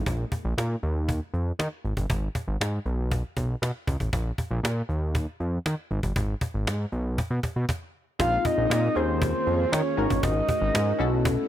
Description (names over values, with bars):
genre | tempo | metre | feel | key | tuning
early-eighties boogie funk | 118 BPM | 4/4 | straight | unclear | A4 = 440 Hz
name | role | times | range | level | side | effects
funky polysynth comp | accompaniment | 0.0, 8.2-11.5 s | Ab3 to Bb4 | -29 LUFS | left 3 dB | chorus
soft string machine | sustained chords | 0.0-0.1, 8.5-11.5 s | Eb3 to Ab4 | -36 LUFS | equal | ensemble chorus
fat analog bass | bass | 0.0-11.4 s | G1 to Eb3 | -26 LUFS | equal | none
cajon | drums | 0.1-11.4 s | none | -29 LUFS | equal | none
soft octave-layered synth lead | melody | 8.2-11.2 s | C5 to F5 | -26 LUFS | right 1 dB | chorus
room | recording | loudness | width
little or no reverb | none | -24 LUFS | side -12 dB against mid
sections
0.1-8.2 A section; 8.2-11.5 B section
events
stop 7.7-8.2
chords
0.1 N.C.; 0.8 Ebsus2; 1.8 N.C.; 2.9 Bsus2; 4.1 N.C.; 4.9 Ebsus2; 5.9 N.C.; 8.2 Bb9sus4; 9.0 Eb9sus4; 10.0 Ab9sus4